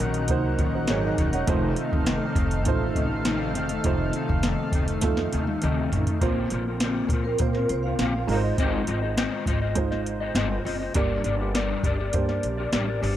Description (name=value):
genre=indie pop, bedroom pop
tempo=101 BPM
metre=4/4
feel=straight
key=Bb major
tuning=A4 = 440 Hz
part: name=dark upright piano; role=accompaniment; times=0.0-13.2 s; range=Ab3 to Gb5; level=-31 LUFS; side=right 6 dB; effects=cassette tape
part: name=mellow electric guitar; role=accompaniment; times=0.0-13.2 s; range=F2 to Eb5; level=-28 LUFS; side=left 4 dB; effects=ensemble chorus, warbly pitch drift
part: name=lush unison pad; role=sustained chords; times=0.0-6.2 s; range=Eb4 to Gb5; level=-32 LUFS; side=equal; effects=chorus
part: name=upright bass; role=bass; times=0.0-13.2 s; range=E1 to Bb2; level=-28 LUFS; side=equal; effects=none
part: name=soft vintage rhythm box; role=drums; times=0.1-13.2 s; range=hi-hat, kick drum, snare drum, toms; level=-27 LUFS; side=equal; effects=none
part: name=vibraphone with medium mallets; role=second line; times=7.2-8.3 s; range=Bb4 to F5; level=-30 LUFS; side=right 2 dB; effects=ensemble chorus, analog delay
room=small room ambience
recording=none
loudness=-22 LUFS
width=side -12 dB against mid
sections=0.0-6.2 A section; 6.2-13.2 B section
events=drum fill 5.0-6.2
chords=0.0 Gb6; 1.5 F7; 6.2 Bbsus2; 8.3 Ab6; 11.0 Gm